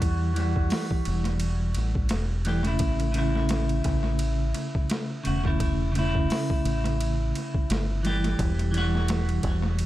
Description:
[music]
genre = trip hop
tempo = 86 BPM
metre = 4/4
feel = swing 57% on 16ths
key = E dorian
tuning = A4 = 441 Hz
[part]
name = clean electric guitar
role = accompaniment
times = 0.0-9.9 s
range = C#3 to G4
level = -28 LUFS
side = equal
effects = harmonic tremolo, vintage 12-bit sampler grit, low-pass filter, tape echo
[part]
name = deep dub fingered electric bass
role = bass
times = 0.0-9.9 s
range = E1 to E2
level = -26 LUFS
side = equal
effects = none
[part]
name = boom bap sampler-style drum kit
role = drums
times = 0.0-9.9 s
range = hi-hat, kick drum, ride cymbal, snare drum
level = -29 LUFS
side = equal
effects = overdrive, small room ambience, tape echo
[sound]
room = little or no reverb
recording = echo-heavy mix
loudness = -23 LUFS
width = side -15 dB against mid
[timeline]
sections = 0.0-9.9 A section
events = filter sweep on clean electric guitar 0.0-9.9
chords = 0.0 Emadd9

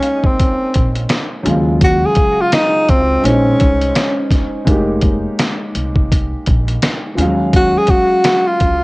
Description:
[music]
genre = hip hop, jazz-hop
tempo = 84 BPM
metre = 4/4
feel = swing 62% on 16ths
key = F phrygian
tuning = A4 = 440 Hz
[part]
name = breathy tenor saxophone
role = melody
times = 0.0-8.8 s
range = C4 to Ab4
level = -15 LUFS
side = equal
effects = analog delay
[part]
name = dark grand piano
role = accompaniment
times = 0.0-8.8 s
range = Db3 to G5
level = -20 LUFS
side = equal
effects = cassette tape
[part]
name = lo-fi sampler-style drum kit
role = drums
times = 0.0-8.8 s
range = hi-hat, kick drum, snare drum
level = -15 LUFS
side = equal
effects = cassette tape
[part]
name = upright bass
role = bass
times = 0.8-8.8 s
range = F1 to Eb2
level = -18 LUFS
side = equal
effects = none
[sound]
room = light reverb, small room ambience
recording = home recording on cassette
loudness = -12 LUFS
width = side -23 dB against mid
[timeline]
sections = 0.0-8.8 A section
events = none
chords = 0.0 Fm11 (rootless); 1.5 Ebm11; 3.2 Bbm11; 4.7 Fm11; 7.2 Ebm11

